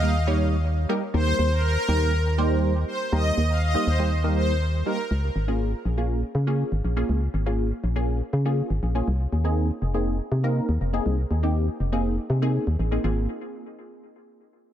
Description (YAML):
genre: dance-pop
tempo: 121 BPM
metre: 4/4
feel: straight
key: Ab major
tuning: A4 = 442 Hz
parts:
  - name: funky polysynth comp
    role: accompaniment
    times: 0.0-13.3 s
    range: G3 to Db5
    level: -28 LUFS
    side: right 1 dB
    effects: chorus, analog delay
  - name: organ-like FM bass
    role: bass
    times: 0.0-13.3 s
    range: F1 to Db3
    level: -23 LUFS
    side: equal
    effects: none
  - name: supersaw pad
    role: melody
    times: 1.1-5.0 s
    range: Bb4 to F5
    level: -28 LUFS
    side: equal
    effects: analog delay
room: light reverb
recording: echo-heavy mix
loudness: -22 LUFS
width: side -11 dB against mid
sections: 0.0-5.1 A section; 5.1-13.0 B section; 13.0-14.7 C section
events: drop 0.0-5.1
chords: 0.0 Eb; 5.1 Db6; 9.1 Abadd9; 13.0 Ab69